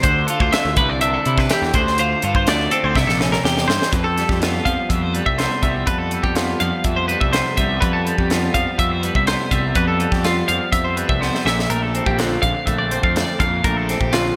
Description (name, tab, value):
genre	math rock and midwest emo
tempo	124 BPM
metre	4/4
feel	straight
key	C major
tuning	A4 = 440 Hz
part	clean electric guitar	accompaniment	0.0-14.4 s	F2 to G4	-26 LUFS	equal	spring reverb
part	twelve-string electric guitar	arpeggios	0.0-14.4 s	F4 to F5	-23 LUFS	equal	lush chorus, digital delay
part	fuzz picked electric bass	bass	0.0-14.3 s	Bb1 to C3	-26 LUFS	equal	overdrive
part	crisp fusion drum kit	drums	0.0-14.2 s	hi-hat, kick drum, snare drum	-24 LUFS	equal	gated reverb
room	moderate lush hall reverb, RT60 1.6 s, small room ambience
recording	bright 1980s-style digital production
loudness	-19 LUFS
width	mono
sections	0.0-3.9 A section; 3.9-14.4 B section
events	drum fill 3.0-3.9, 11.2-11.7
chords	0.0 Dm7; 0.8 Cmaj9; 1.7 Dm7; 3.0 C7b9; 3.9 Fmaj9#11; 11.5 Bbmaj9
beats	| 0.04 0.53 1.01 1.50 | 1.98 2.47 2.95 3.44 | 3.92 4.41 4.90 5.38 | 5.87 6.36 6.84 7.33 | 7.81 8.30 8.79 9.27 | 9.76 10.24 10.73 11.21 | 11.70 12.19 12.67 13.16 | 13.64 14.13